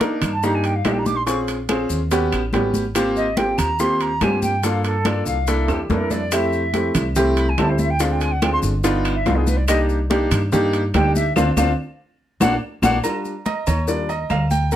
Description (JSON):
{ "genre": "Afro-Cuban jazz", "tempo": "143 BPM", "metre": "4/4", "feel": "straight", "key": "C minor", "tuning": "A4 = 444 Hz", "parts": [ { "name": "warm grand piano", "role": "accompaniment", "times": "0.0-14.8 s", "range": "G3 to G5", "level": "-21 LUFS", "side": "equal", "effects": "none" }, { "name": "bongos and cowbell", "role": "percussion", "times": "0.0-14.8 s", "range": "none", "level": "-30 LUFS", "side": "left 6 dB", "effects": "none" }, { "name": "congas", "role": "percussion", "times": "0.0-14.8 s", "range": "none", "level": "-25 LUFS", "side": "left 1 dB", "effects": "none" }, { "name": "maracas", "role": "percussion", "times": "0.0-14.8 s", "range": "none", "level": "-34 LUFS", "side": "left 7 dB", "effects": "none" }, { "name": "timbales and agogo bells", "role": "percussion", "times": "0.0-14.8 s", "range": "none", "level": "-29 LUFS", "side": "right 6 dB", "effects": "none" }, { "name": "upright bass", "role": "bass", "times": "0.2-14.8 s", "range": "G1 to G2", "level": "-22 LUFS", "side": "equal", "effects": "none" }, { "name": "claves", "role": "percussion", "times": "0.2-14.5 s", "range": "none", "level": "-34 LUFS", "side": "left 6 dB", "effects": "none" }, { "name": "silver concert flute", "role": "second line", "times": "0.3-13.0 s", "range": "G4 to D6", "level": "-23 LUFS", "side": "equal", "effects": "none" } ], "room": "light reverb", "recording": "none", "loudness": "-17 LUFS", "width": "side -11 dB against mid", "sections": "0.0-13.0 A section; 13.0-14.8 A section", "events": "flute solo 0.0-13.0; drum fill 5.7-6.3, 12.2-13.0; band accent 11.4-13.0; grand piano solo 13.0-14.8", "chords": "0.0 Abmaj7sus2 (rootless); 1.3 Bbm7; 2.1 Eb7alt; 3.0 Abmaj13; 4.6 Gm9; 5.5 C13; 6.3 Fmaj7; 8.0 Dm7b5; 8.8 G7b13; 9.7 Cm9; 11.4 Dm7; 12.2 Bbaug; 13.0 Ebmaj9" }